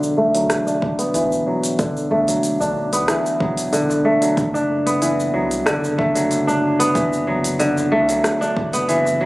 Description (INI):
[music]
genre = organic downtempo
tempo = 93 BPM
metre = 4/4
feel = straight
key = unclear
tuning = A4 = 442 Hz
[part]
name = kora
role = arpeggios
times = 0.0-9.3 s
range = D3 to D4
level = -17 LUFS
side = equal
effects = low-pass filter, tape echo
[part]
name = round analog bass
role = bass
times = 0.0-9.3 s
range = E1 to C2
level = -30 LUFS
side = equal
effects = sidechain pumping
[part]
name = organic electronic drum kit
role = drums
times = 0.0-9.2 s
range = cabasa, hi-hat, rim click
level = -26 LUFS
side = equal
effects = none
[part]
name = electronic kick drum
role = drums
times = 0.8-8.7 s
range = none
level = -23 LUFS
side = equal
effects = overdrive
[part]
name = udu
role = percussion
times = 1.1-9.2 s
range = none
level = -40 LUFS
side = left 1 dB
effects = none
[sound]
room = moderate lush hall reverb, RT60 2.5 s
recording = recorded on a phone in the room, club reverb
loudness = -16 LUFS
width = side -19 dB against mid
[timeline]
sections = 0.0-9.3 A section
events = filter sweep on kora 0.0-9.3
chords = 0.0 E5; 4.4 F#m7